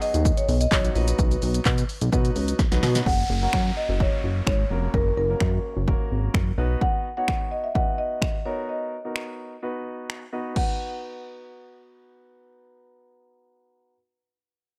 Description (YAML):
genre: dance-pop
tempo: 128 BPM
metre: 4/4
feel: straight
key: B major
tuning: A4 = 440 Hz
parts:
  - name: marimba with soft mallets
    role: melody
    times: 0.0-13.9 s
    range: A#4 to F#5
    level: -31 LUFS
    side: equal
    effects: low-pass filter, analog delay
  - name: warm grand piano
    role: accompaniment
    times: 0.0-14.0 s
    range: F#3 to C#5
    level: -36 LUFS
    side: equal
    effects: sidechain pumping, low-pass filter
  - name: punchy analog drum machine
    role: drums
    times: 0.0-10.7 s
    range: crash cymbal, finger snaps, handclaps, hi-hat, kick drum, shaker, snare drum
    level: -27 LUFS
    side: equal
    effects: none
  - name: chorused synth bass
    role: bass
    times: 0.1-6.8 s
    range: E#1 to B2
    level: -26 LUFS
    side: equal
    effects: sidechain pumping
  - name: downlifter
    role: sound effects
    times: 3.1-6.8 s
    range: none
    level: -40 LUFS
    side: equal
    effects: none
room: little or no reverb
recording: dry, gritty hardware recording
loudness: -24 LUFS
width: mono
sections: 0.0-3.1 A section; 3.1-10.6 B section; 10.6-14.3 C section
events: drum fill 2.6-3.1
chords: 0.0 B; 3.1 F#; 6.6 B